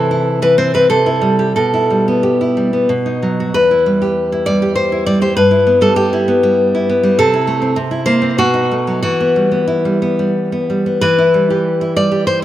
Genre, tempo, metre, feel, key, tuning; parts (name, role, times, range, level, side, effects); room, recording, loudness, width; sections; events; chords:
romantic piece for solo classical guitar; 88-104 BPM; 3/4; rubato; E minor; A4 = 440 Hz
nylon-string guitar; solo; 0.0-12.4 s; E2 to D5; -12 LUFS; equal; tape echo
wet scoring stage reverb, RT60 1.5 s; close, detailed microphones; -12 LUFS; side -13 dB against mid
0.0-11.0 A section; 11.0-12.4 A section
0.0 Am/C; 0.9 C; 1.6 Em/B; 2.9 B; 3.6 Em; 5.4 Em/G; 7.2 Am/C; 7.8 C7; 8.4 B7; 9.0 Em